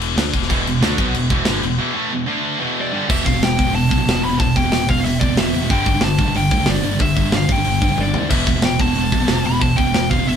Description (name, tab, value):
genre	heavy metal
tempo	184 BPM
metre	4/4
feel	straight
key	E minor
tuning	A4 = 440 Hz
part	high-gain distorted guitar	riff	0.0-10.4 s	E2 to D4	-22 LUFS	left 5 dB	distortion
part	modern bright picked electric bass	bass	0.0-10.4 s	E1 to D#2	-24 LUFS	equal	none
part	tight metal drum kit	drums	0.0-10.4 s	crash cymbal, hi-hat, kick drum, snare drum, toms	-20 LUFS	equal	none
part	heavy high-gain guitar	riff	0.5-10.4 s	E2 to D4	-21 LUFS	right 5 dB	distortion
part	high-gain lead guitar	melody	2.8-10.4 s	D5 to B5	-22 LUFS	left 2 dB	distortion
room	moderate studio reverb, RT60 0.8 s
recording	band playing live in one room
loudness	-15 LUFS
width	side -8 dB against mid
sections	0.0-3.1 A section; 3.1-10.4 B section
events	break 1.8-3.1; drum fill 8.0-8.3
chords	0.0 Em; 2.3 D5; 2.6 Em; 5.7 G5; 8.3 Em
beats	0.17 | 0.50 0.82 1.15 1.47 | 1.80 2.12 2.45 2.77 | 3.10 3.42 3.75 4.07 | 4.40 4.72 5.05 5.38 | 5.70 6.03 6.35 6.68 | 7.01 7.33 7.66 7.99 | 8.31 8.64 8.97 9.30 | 9.62 9.95 10.28